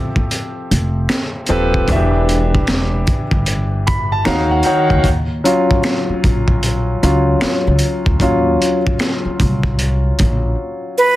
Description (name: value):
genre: R&B, neo-soul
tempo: 76 BPM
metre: 4/4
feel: swing 63% on 16ths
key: unclear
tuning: A4 = 441 Hz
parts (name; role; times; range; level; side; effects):
- clear concert grand piano; accompaniment; 0.0-11.2 s; Eb3 to B5; -18 LUFS; left 1 dB; plate reverb
- upright bass; bass; 0.2-10.5 s; Eb1 to F2; -17 LUFS; equal; none
- crunchy breakbeat drum kit; drums; 0.2-10.4 s; finger snaps, hi-hat, kick drum, snare drum; -18 LUFS; equal; none
- breathy concert flute; melody; 11.0-11.2 s; B4; -9 LUFS; right 2 dB; none
room: light reverb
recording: dense, heavily limited modern master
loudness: -13 LUFS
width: side -16 dB against mid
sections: 0.0-5.0 A section; 5.0-11.2 B section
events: grand piano fill 3.5-5.0; grand piano solo 5.0-11.2; silent gap 10.6-11.2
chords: 0.0 Fmaj9; 1.9 Em7; 4.3 Ebm7; 5.0 Ebm7 (rootless)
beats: 0.31 1.10 | 1.89 2.67 3.46 4.25 | 5.04 5.83 6.62 7.41 | 8.20 8.99 9.78 10.57